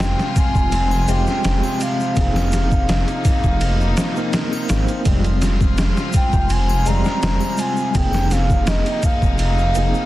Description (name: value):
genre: trip hop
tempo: 83 BPM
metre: 4/4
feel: straight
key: F minor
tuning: A4 = 440 Hz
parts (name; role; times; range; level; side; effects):
- pure breathy sine lead; melody; 0.0-10.1 s; Eb5 to Bb5; -24 LUFS; equal; chorus, tape echo
- tine electric piano; accompaniment; 0.0-10.1 s; G3 to C5; -25 LUFS; equal; medium stereo tremolo, tape echo
- rich chamber string section; sustained chords; 0.0-10.1 s; C3 to F4; -26 LUFS; left 1 dB; none
- dark detuned saw bass; bass; 0.0-9.9 s; F1 to Ab1; -19 LUFS; equal; none
- trip hop sampler-style drum kit; drums; 0.0-9.9 s; kick drum, ride cymbal, snare drum; -20 LUFS; equal; none
- egg shaker and triangle; percussion; 0.0-10.1 s; none; -36 LUFS; left 2 dB; none
room: light reverb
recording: dense, heavily limited modern master, vinyl crackle, lossy compression artefacts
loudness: -16 LUFS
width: side -16 dB against mid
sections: 0.0-10.1 A section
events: none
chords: 0.0 Fmadd9; 2.2 Abadd9/F; 5.1 Fmadd9; 8.0 Abadd9/F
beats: 0.00 0.72 1.44 | 2.17 2.89 3.61 4.33 | 5.06 5.78 6.50 7.23 | 7.95 8.67 9.40